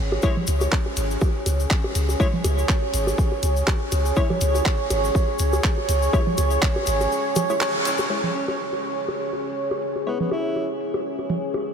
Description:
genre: minimal techno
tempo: 122 BPM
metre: 4/4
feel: swing 55% on 16ths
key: C# minor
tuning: A4 = 440 Hz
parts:
  - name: punchy sub bass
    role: bass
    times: 0.0-11.5 s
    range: G#1 to C#2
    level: -22 LUFS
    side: equal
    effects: sidechain pumping, high-pass filter
  - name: deep dark ambient pad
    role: texture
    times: 0.0-11.7 s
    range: C#4 to C#5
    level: -25 LUFS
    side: right 2 dB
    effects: chorus, built-in reverb, sidechain pumping
  - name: bongos and congas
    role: percussion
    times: 0.1-11.7 s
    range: none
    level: -29 LUFS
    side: right 1 dB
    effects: diffuse ambient delay
  - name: wavetable chord stab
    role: stabs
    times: 0.2-10.1 s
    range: G#3 to C#5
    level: -33 LUFS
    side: left 3 dB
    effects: none
  - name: electronic kick drum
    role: drums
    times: 0.2-6.7 s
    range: none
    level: -22 LUFS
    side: equal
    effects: none
  - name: tube shaker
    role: percussion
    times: 0.2-8.1 s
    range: none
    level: -35 LUFS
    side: left 6 dB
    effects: none
  - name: house drum kit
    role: drums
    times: 0.5-11.4 s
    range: handclaps, hi-hat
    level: -29 LUFS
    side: right 1 dB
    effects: low-pass filter on hats, low-pass filter on snare, low-pass filter on room
  - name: clear alto saxophone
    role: melody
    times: 8.3-10.7 s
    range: B3 to E4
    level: -32 LUFS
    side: equal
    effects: diffuse ambient delay
room: moderate huge ambient reverb, RT60 6.6 s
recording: dreamy mix soaked in reverb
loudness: -20 LUFS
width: side -7 dB against mid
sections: 0.0-8.1 A section; 8.1-11.7 B section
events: band accent 7.6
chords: 0.0 C#5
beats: | 0.23 0.72 1.22 1.71 | 2.20 2.69 3.18 3.67 | 4.17 4.66 5.15 5.64 | 6.13 6.62 7.12 7.61 | 8.10 8.59 9.08 9.58 | 10.07 10.56 11.05 11.54

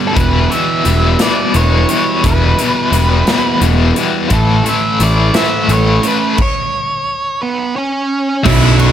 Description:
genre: quiet-loud alternative rock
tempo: 58 BPM (dotted quarters)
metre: 6/8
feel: straight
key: unclear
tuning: A4 = 436 Hz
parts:
  - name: twelve-string electric guitar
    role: arpeggios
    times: 0.0-8.9 s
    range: B1 to E4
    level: -20 LUFS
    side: right 12 dB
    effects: wide subtle chorus, tape echo
  - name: overdriven electric guitar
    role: riff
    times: 0.0-8.9 s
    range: B1 to A3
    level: -15 LUFS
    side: left 7 dB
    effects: tremolo
  - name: octave-fuzz lead guitar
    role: melody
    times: 0.1-8.9 s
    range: B3 to F#5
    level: -17 LUFS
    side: right 2 dB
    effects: distortion
  - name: fuzz picked electric bass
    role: bass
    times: 0.2-8.9 s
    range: E1 to B1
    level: -13 LUFS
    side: equal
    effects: overdrive
  - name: big rock drum kit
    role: drums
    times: 0.2-8.9 s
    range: crash cymbal, hi-hat, kick drum, ride cymbal, snare drum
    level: -19 LUFS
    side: equal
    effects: none
  - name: thick fuzz guitar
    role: riff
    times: 8.5-8.9 s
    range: B1 to D4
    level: -14 LUFS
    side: right 11 dB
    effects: distortion
room: little or no reverb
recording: none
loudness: -11 LUFS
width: side -10 dB against mid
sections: 0.0-8.4 A section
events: stop 6.4-8.4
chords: 0.2 Em; 4.3 A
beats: | 0.16 1.20 | 2.24 3.27 | 4.31 5.35 | 6.38 7.42 | 8.45

